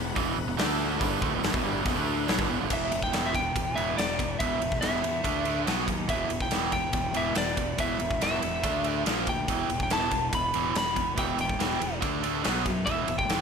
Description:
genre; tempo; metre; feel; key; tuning
hard rock; 142 BPM; 4/4; straight; E minor; A4 = 440 Hz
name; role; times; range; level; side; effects
overdriven tonewheel organ; sustained chords; 0.0-2.7 s; D4 to F#5; -39 LUFS; equal; chorus vibrato, slow rotary speaker
cranked stack guitar; riff; 0.0-13.4 s; E2 to D4; -31 LUFS; right 13 dB; overdrive
crunchy overdriven guitar; riff; 0.0-13.4 s; E2 to D4; -36 LUFS; left 14 dB; none
fuzz fingered electric bass; bass; 0.0-13.4 s; E1 to F#2; -34 LUFS; left 1 dB; overdrive
big rock drum kit; drums; 0.2-13.4 s; crash cymbal, hi-hat, kick drum, ride cymbal, snare drum; -30 LUFS; left 1 dB; none
lightly driven lead guitar; melody; 2.7-13.4 s; D5 to B5; -30 LUFS; equal; none
room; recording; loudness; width
light reverb, small room ambience; none; -25 LUFS; side -6 dB against mid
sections
0.0-2.7 A section; 2.7-13.4 B section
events
none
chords
0.0 E5; 0.6 D5; 1.0 Em; 5.2 D5; 5.7 B5; 6.1 Em; 8.6 D5; 9.1 A#5; 9.5 Em; 12.0 D5; 12.4 B5; 12.9 Em

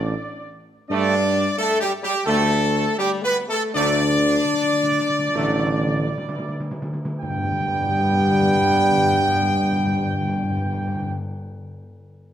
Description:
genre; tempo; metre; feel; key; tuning
classical, ceremonial fanfare; 59-91 BPM; 4/4; straight; G major; A4 = 440 Hz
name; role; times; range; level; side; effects
clear trumpet section; melody; 0.0-11.1 s; G4 to G5; -22 LUFS; right 1 dB; none
mellow French horn section; sustained chords; 0.0-11.1 s; G3 to D4; -25 LUFS; left 4 dB; none
mellow tuba; bass; 0.0-11.1 s; A1 to G2; -25 LUFS; right 3 dB; none
clear trombone section; sustained chords; 0.9-11.1 s; F#3 to B3; -30 LUFS; right 4 dB; none
timpani; percussion; 3.7-11.2 s; G2 to D3; -27 LUFS; left 1 dB; none
room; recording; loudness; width
moderate recital hall reverb, RT60 1.8 s; close, detailed microphones; -18 LUFS; side -10 dB against mid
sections
0.0-7.2 A section; 7.2-11.1 B section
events
slowing down 0.0-7.2; timpani fill 3.8-7.2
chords
0.0 D5; 0.9 Gsus2; 3.8 D; 7.2 G

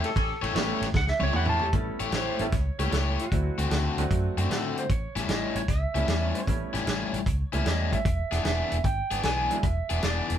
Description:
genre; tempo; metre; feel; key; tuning
electric blues shuffle; 152 BPM; 4/4; swing 68% on 8ths; A mixolydian; A4 = 440 Hz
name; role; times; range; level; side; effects
clean lap steel guitar; melody; 0.0-10.4 s; E4 to A5; -32 LUFS; right 2 dB; none
cranked stack guitar; riff; 0.0-10.3 s; A2 to C#5; -30 LUFS; left 5 dB; overdrive
warm horn section; stabs; 0.0-1.7 s; C#4 to A4; -34 LUFS; left 1 dB; none
warm soul drum kit; drums; 0.0-10.4 s; hi-hat, kick drum, ride cymbal, snare drum, toms; -30 LUFS; right 1 dB; none
vintage muted fingered electric bass; bass; 0.2-10.4 s; E1 to A2; -29 LUFS; equal; none
clear baby grand piano; accompaniment; 0.5-9.6 s; F#3 to G4; -34 LUFS; right 3 dB; none
room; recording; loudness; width
light reverb; band playing live in one room; -24 LUFS; side -10 dB against mid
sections
0.0-1.7 A section; 1.7-10.4 B section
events
electric slide guitar solo 0.0-1.7; drum fill 1.0-1.7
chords
0.0 A7; 3.3 D7; 4.9 A7; 8.1 E7

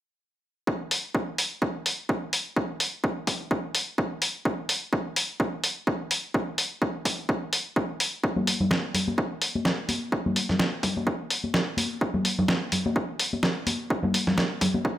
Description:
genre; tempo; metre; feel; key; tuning
house; 127 BPM; 4/4; swing 56% on 16ths; none; none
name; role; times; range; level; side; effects
electronic kick drum; drums; 0.7-15.0 s; none; -28 LUFS; equal; overdrive, high-pass filter on kick, studio reverb, high-pass filter on room
dusty soul sampler-style drum kit; drums; 0.9-14.7 s; hi-hat, snare drum; -26 LUFS; equal; studio reverb
tube shaker and congas; percussion; 8.2-15.0 s; none; -28 LUFS; left 1 dB; sidechain pumping on perc, low-pass filter on perc
room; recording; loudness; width
little or no reverb; none; -24 LUFS; side -13 dB against mid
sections
0.7-15.0 A section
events
none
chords
none

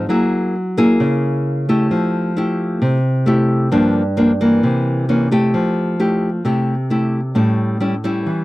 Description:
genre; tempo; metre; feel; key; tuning
bossa nova; 132 BPM; 4/4; straight; F major; A4 = 439 Hz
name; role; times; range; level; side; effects
nylon-string guitar; solo; 0.0-8.4 s; G2 to Ab4; -14 LUFS; equal; none
room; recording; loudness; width
light reverb; dry, close 1970s-style studio recording; -14 LUFS; side -18 dB against mid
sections
0.0-5.5 A section; 5.5-8.4 B section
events
none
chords
0.1 Gb9; 1.9 Fmaj9; 3.7 Gm7; 4.6 C7b9; 5.5 Fmaj9; 7.3 A7

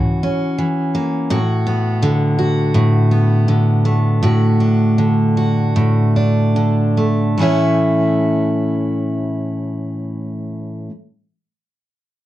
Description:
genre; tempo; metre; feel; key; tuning
pop; 71-84 BPM; 4/4; straight; A major; A4 = 440 Hz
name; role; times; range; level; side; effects
picked steel-string acoustic guitar; accompaniment; 0.0-10.9 s; A2 to F#4; -14 LUFS; equal; none
room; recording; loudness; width
wet small room reverb, RT60 0.5 s; cassette tape; -14 LUFS; side -14 dB against mid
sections
0.0-7.4 A section; 7.4-10.8 B section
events
slowing down 1.3-7.4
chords
0.0 F#7; 1.3 Bm/A; 4.2 D/A; 7.4 A

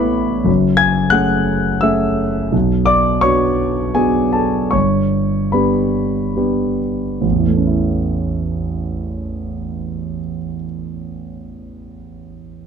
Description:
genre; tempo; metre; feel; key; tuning
neoclassical minimalist piano; 70-90 BPM; 3/4; rubato; A major; A4 = 440 Hz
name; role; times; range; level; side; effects
dark concert grand piano; solo; 0.0-12.7 s; F#1 to G#6; -15 LUFS; equal; none
room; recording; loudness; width
moderate studio reverb, RT60 0.8 s; dark, warm production; -15 LUFS; side -7 dB against mid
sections
0.0-7.2 A section; 7.2-12.2 B section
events
slowing down 1.5-7.2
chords
0.5 F#madd9; 2.5 Bmadd9; 4.7 G; 7.2 A

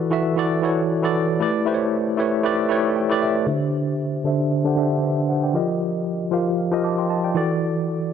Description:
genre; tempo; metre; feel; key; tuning
amapiano; 116 BPM; 4/4; swing 55% on 16ths; unclear; A4 = 439 Hz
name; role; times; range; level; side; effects
tine electric piano; solo; 0.0-8.1 s; D3 to D6; -19 LUFS; equal; medium stereo tremolo, low-pass filter
room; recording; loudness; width
light reverb; none; -19 LUFS; side -8 dB against mid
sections
0.0-3.5 A section; 3.5-8.1 B section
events
drop 0.0-3.5; tine electric piano fill 2.7-3.5; filter sweep on tine electric piano 3.5-8.1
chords
0.0 E9sus4; 1.4 A9sus4; 3.5 D9sus4; 5.5 F9sus4; 7.4 E9sus4

